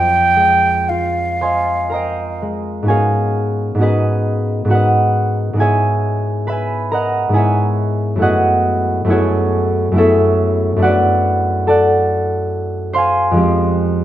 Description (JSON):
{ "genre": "classical, impressionist duo for flute and harp", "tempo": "55-72 BPM", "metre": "3/4", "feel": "rubato", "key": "unclear", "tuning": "A4 = 440 Hz", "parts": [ { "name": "mellow concert flute", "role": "melody", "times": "0.0-2.4 s", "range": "F5 to G5", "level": "-14 LUFS", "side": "right 1 dB", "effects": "none" }, { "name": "concert harp", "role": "accompaniment", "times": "0.0-14.0 s", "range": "F2 to C6", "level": "-14 LUFS", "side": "equal", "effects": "none" } ], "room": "light reverb", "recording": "close, detailed microphones", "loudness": "-13 LUFS", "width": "side -12 dB against mid", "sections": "0.0-2.9 A section; 2.9-14.0 B section", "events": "none", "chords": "0.0 Fm7; 2.9 G#m11; 5.6 Emaj7/G#; 8.2 F#m11; 10.9 Dmaj7/F#; 13.4 Fmadd9", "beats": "0.91 1.94 | 2.90 3.82 4.72 | 5.61 6.49 7.36 | 8.24 9.13 10.00 | 10.85 11.69 12.54 | 13.39" }